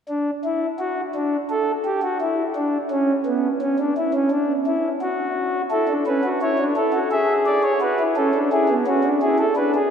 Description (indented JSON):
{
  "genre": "classical, baroque-style 3-part fugue for pipe organ",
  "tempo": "86 BPM",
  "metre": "4/4",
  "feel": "straight",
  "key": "unclear",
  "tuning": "A4 = 437 Hz",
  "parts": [
    { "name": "pipe organ, principal", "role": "solo", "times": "0.1-9.9 s", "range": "B3 to E5", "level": "-19 LUFS", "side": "equal", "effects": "none" }
  ],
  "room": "wet cathedral reverb, RT60 6.5 s",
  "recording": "recorded in a church or concert hall",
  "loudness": "-19 LUFS",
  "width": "side -7 dB against mid",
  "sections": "0.1-9.9 A section",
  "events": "none",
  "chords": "0.1 N.C.; 5.7 A; 7.1 E/G#; 8.5 E7"
}